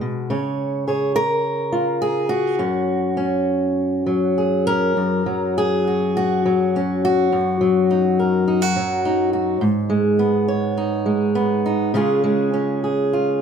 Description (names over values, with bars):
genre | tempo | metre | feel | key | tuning
folk, solo fingerstyle acoustic guitar | 103 BPM | 4/4 | rubato | F# major | A4 = 440 Hz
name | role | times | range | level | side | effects
fingerpicked steel-string acoustic guitar | solo | 0.0-13.4 s | F#2 to C#5 | -17 LUFS | equal | none
room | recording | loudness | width
light reverb | close, detailed microphones | -17 LUFS | side -7 dB against mid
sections
0.0-5.0 A section; 5.0-13.4 B section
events
none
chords
0.3 C#; 2.6 F#sus2; 7.3 D#m/F#; 9.6 G#m; 11.9 C#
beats
| 0.29 0.86 1.43 2.01 | 2.59 3.17 3.76 4.37 | 4.97 5.57 6.16 6.75 | 7.33 7.90 8.47 9.04 | 9.61 10.18 10.76 11.34 | 11.93 12.52 13.11